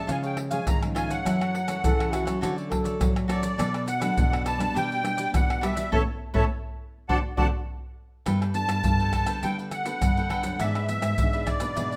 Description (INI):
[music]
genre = samba and choro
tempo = 103 BPM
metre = 4/4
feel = straight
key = D major, G major from 8.3 s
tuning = A4 = 439 Hz
[part]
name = musette accordion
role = melody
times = 0.0-12.0 s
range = C#5 to Bb5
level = -32 LUFS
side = equal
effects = none
[part]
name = cavaquinho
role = accompaniment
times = 0.0-12.0 s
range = D4 to G5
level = -38 LUFS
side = equal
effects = none
[part]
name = nylon-string guitar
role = accompaniment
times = 0.0-12.0 s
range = F#2 to A4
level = -36 LUFS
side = equal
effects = none
[part]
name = nylon-string guitar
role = bass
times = 0.1-12.0 s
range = F#2 to F#3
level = -32 LUFS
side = equal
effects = none
[part]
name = maracas, surdo, pandeiro and tamborim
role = percussion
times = 0.1-12.0 s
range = none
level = -30 LUFS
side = equal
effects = none
[part]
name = warm trombone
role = second line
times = 1.8-7.5 s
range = F#4 to A4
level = -33 LUFS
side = equal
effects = none
[sound]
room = light reverb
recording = none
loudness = -26 LUFS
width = mono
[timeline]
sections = 0.0-8.3 A section; 8.3-12.0 B section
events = band accent 5.9-8.3; drum fill 7.7-8.3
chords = 0.1 C#; 1.3 F#m7; 2.4 Dmaj7; 3.6 Bm7; 4.8 G/B; 5.9 Aadd9; 7.1 D7; 8.3 Gadd9; 10.6 E7/G#